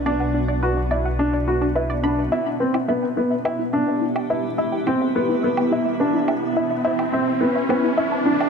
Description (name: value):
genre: piano and strings electronica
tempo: 106 BPM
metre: 4/4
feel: straight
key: E minor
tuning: A4 = 439 Hz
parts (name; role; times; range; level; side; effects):
- granular cloud pad; sustained chords; 0.0-8.5 s; B3 to E5; -26 LUFS; right 1 dB; built-in reverb
- dark detuned saw bass; bass; 0.0-2.3 s; B1; -24 LUFS; equal; none
- analog pluck; arpeggios; 0.1-8.5 s; D4 to B5; -28 LUFS; right 1 dB; chorus, ping-pong delay
- warm upright piano; riff; 0.1-8.5 s; B3 to F#4; -21 LUFS; left 1 dB; ping-pong delay
- riser; sound effects; 4.3-8.5 s; none; -29 LUFS; right 1 dB; none
- woodblock; drums; 2.7-8.5 s; none; -30 LUFS; right 5 dB; overdrive
room: moderate huge ambient reverb, RT60 4.9 s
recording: none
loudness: -19 LUFS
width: side -6 dB against mid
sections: 0.0-2.3 A section; 2.3-8.5 B section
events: filter sweep on upright piano 0.0-2.3; filter sweep on synth arpeggio sound 0.0-2.3; build-up 2.3-8.5; riser 4.3-8.5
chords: 0.0 Bm; 2.3 Em; 6.9 Am